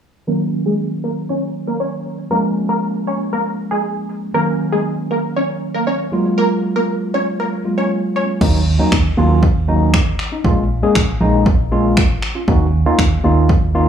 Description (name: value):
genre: dance-pop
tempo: 118 BPM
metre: 4/4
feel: straight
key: Eb minor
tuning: A4 = 440 Hz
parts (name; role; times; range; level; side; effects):
- wide unison pluck; melody; 0.3-8.3 s; Ab3 to Db5; -20 LUFS; equal; phaser, sidechain pumping, low-pass filter, analog delay
- tine electric piano; accompaniment; 0.3-13.9 s; Eb3 to Ab4; -19 LUFS; equal; medium stereo tremolo, sidechain pumping, low-pass filter
- organ-like FM bass; bass; 8.4-13.9 s; Bb1 to Eb2; -16 LUFS; right 1 dB; sidechain pumping
- house drum kit; drums; 8.4-13.6 s; crash cymbal, finger snaps, kick drum; -17 LUFS; equal; none
room: light reverb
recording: dry, gritty hardware recording, small room ambience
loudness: -14 LUFS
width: side -8 dB against mid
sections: 0.3-8.4 A section; 8.4-13.9 B section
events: filter sweep 0.3-8.4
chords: 0.3 Ebm7; 2.3 Bbm7; 4.3 Ebm7; 6.1 Gbmaj9; 8.4 Ebm7; 10.4 Bbm7; 12.5 Ebm7